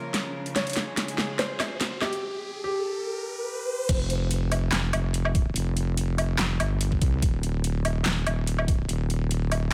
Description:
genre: heavy wobble dubstep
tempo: 144 BPM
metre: 4/4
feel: swing 53% on 16ths, half-time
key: F minor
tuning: A4 = 440 Hz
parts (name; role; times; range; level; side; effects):
- clear concert grand piano; melody; 0.0-3.8 s; G4 to Db5; -35 LUFS; equal; dub echo
- warm studio string section; sustained chords; 0.0-2.2 s; Db3 to Bb4; -39 LUFS; equal; sidechain pumping
- riser; sound effects; 0.3-3.9 s; none; -37 LUFS; equal; none
- dubstep drum kit; drums; 0.1-9.6 s; crash cymbal, handclaps, hi-hat, snare drum, woodblock; -31 LUFS; equal; studio reverb
- wobble bass; bass; 3.9-9.7 s; Eb1 to C2; -28 LUFS; equal; chorus, overdrive
- electronic kick drum; drums; 3.9-8.8 s; none; -26 LUFS; equal; overdrive, studio reverb
room: light reverb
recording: none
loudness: -27 LUFS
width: mono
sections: 0.0-3.9 A section; 3.9-9.7 B section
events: build-up 0.0-3.9; drum fill 0.0-2.2; riser 0.3-3.9; break 2.2-3.9; drop 3.9-9.7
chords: 0.0 Bbm; 0.6 Db; 2.2 N.C.; 3.9 F5; 7.2 N.C.

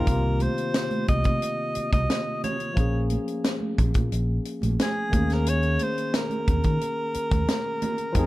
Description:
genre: lush 1970s-style soul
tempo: 89 BPM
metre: 4/4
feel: straight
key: unclear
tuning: A4 = 438 Hz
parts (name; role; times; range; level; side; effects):
- clear alto saxophone; melody; 0.0-8.3 s; Ab4 to Eb5; -29 LUFS; equal; none
- barky tine electric piano; accompaniment; 0.0-8.3 s; C3 to Ab4; -30 LUFS; left 2 dB; none
- fingered electric bass; bass; 0.1-8.3 s; Bb1 to Eb3; -25 LUFS; equal; none
- tight funk drum kit; drums; 0.1-8.3 s; hi-hat, kick drum, snare drum; -26 LUFS; equal; none
- congas; percussion; 0.1-8.3 s; none; -34 LUFS; right 3 dB; none
room: small room ambience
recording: dark, warm production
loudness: -22 LUFS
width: side -17 dB against mid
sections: 0.1-8.3 A section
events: none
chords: 0.1 Cm7; 2.8 Bbm7; 5.1 Eb7sus4

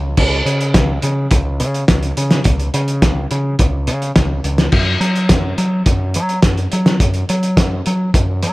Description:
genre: indie rock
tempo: 106 BPM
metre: 4/4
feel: straight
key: unclear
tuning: A4 = 440 Hz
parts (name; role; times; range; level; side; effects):
- growling picked electric bass; bass; 0.0-8.5 s; C#2 to F#3; -17 LUFS; equal; overdrive
- cloth-damped thuddy drum kit; drums; 0.2-8.5 s; crash cymbal, hi-hat, kick drum, snare drum; -15 LUFS; equal; none
room: little or no reverb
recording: dark, warm production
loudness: -13 LUFS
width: side -20 dB against mid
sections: 0.2-8.5 A section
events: none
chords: none

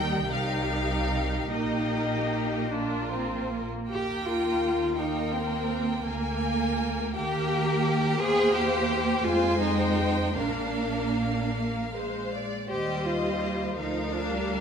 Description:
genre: classical, slow romantic movement for string orchestra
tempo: 48-60 BPM (dotted quarters)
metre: 6/8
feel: rubato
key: Eb major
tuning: A4 = 436 Hz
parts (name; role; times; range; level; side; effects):
- rich chamber violin section; melody; 0.0-14.6 s; Eb5 to Ab5; -33 LUFS; left 2 dB; none
- dark chamber violin section; second line; 0.0-14.6 s; F4 to D5; -34 LUFS; left 3 dB; none
- rich studio viola section; accompaniment; 0.0-14.6 s; F3 to Eb4; -31 LUFS; right 1 dB; none
- rich chamber cello section; bass; 0.0-14.6 s; Bb2 to Ab4; -30 LUFS; right 1 dB; none
- warm chamber double bass section; bass; 0.0-14.6 s; Bb1 to F2; -33 LUFS; right 2 dB; none
room: moderate scoring stage reverb, RT60 1.9 s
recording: minimal, uncompressed stereo recording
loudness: -25 LUFS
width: side -7 dB against mid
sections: 0.0-3.9 A section; 3.9-14.6 B section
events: none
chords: 0.3 Cm7; 1.5 Eb/Bb; 2.7 Bb; 3.9 Eb; 6.0 Bb7/D; 7.2 Eb; 8.2 C7/E; 9.2 Fm; 10.4 Bb; 12.7 Cm/Eb; 13.8 Bb/D

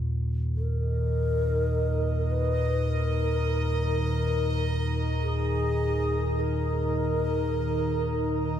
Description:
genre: dark ambient drone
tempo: 51 BPM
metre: 4/4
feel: straight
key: unclear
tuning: A4 = 440 Hz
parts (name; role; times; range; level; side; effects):
- gamelan-type bossed gongs; arpeggios; 0.0-4.2 s; Db3; -50 LUFS; right 3 dB; none
- deep rumbling drone; drone; 0.0-8.6 s; Eb2 to Bb2; -27 LUFS; equal; built-in reverb, wide subtle chorus
- mellow hollow long shakuhachi; melody; 0.6-8.6 s; Ab4 to Cb5; -30 LUFS; left 2 dB; shimmer reverb, analog delay
- dark analog pad; sustained chords; 0.6-8.6 s; Eb3 to Bb5; -33 LUFS; right 1 dB; chorus, shimmer reverb
- bubbling stepped-filter texture; texture; 0.9-8.6 s; Eb5; -37 LUFS; right 5 dB; chorus, built-in reverb, shimmer reverb
room: wet plate reverb, RT60 3.5 s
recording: echo-heavy mix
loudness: -24 LUFS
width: side -9 dB against mid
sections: 0.0-8.6 A section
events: none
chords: 0.0 Eb5

